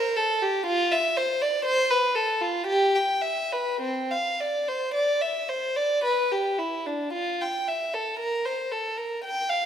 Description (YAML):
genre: classical, baroque-style suite movement for unaccompanied violin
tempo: 49-62 BPM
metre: 3/4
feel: rubato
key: C major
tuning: A4 = 440 Hz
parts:
  - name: rich violin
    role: solo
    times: 0.0-9.7 s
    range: C4 to G5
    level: -23 LUFS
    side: equal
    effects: none
room: moderate scoring stage reverb, RT60 1.4 s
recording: minimal, uncompressed stereo recording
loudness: -23 LUFS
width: side -9 dB against mid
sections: 0.0-7.1 A section; 7.1-9.7 A section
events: none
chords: none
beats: | 0.65 1.63 2.65 | 3.79 4.94 6.03 | 7.13 8.19 9.24